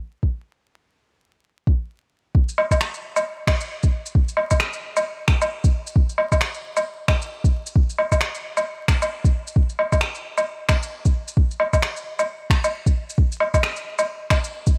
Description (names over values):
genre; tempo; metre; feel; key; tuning
future garage; 133 BPM; 4/4; swing 60% on 16ths; none; none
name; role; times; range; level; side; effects
electronic kick drum; drums; 0.2-14.7 s; none; -20 LUFS; equal; none
electronic shaker, woodblock and finger snaps; drums; 2.5-14.7 s; none; -25 LUFS; equal; none
room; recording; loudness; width
light reverb; vinyl crackle; -22 LUFS; mono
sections
0.0-2.3 A section; 2.3-14.8 B section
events
stop 1.9-2.3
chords
none